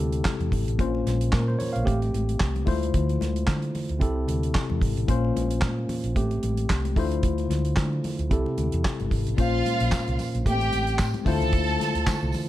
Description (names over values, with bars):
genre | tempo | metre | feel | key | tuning
disco | 112 BPM | 4/4 | swing 56% on 16ths | unclear | A4 = 440 Hz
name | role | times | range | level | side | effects
barky tine electric piano | accompaniment | 0.0-12.5 s | Bb2 to F5 | -28 LUFS | moving between left 7 dB and right 1 dB | auto-pan
hollow-body short-scale fingered electric bass | bass | 0.0-12.3 s | G1 to D3 | -27 LUFS | right 1 dB | none
damped 70s drum kit | drums | 0.1-12.5 s | handclaps, hi-hat, kick drum, snare drum | -26 LUFS | right 1 dB | none
congas | percussion | 0.3-12.5 s | none | -36 LUFS | left 4 dB | none
rich studio violin section | second line | 9.4-12.3 s | F4 to A5 | -28 LUFS | right 1 dB | none
tambourine | percussion | 9.4-12.5 s | none | -44 LUFS | right 7 dB | none
room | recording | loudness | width
light reverb, small room ambience | dark, warm production | -22 LUFS | side -14 dB against mid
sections
0.0-9.4 A section; 9.4-12.5 B section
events
none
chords
0.0 C69; 0.8 Bbmadd9; 1.9 Am7; 2.7 Dm7; 4.0 C69; 5.1 Bbmadd9; 6.2 Am7; 7.0 Dm7; 8.3 C6; 9.4 Bbmadd9; 10.5 Am7; 11.3 Dm7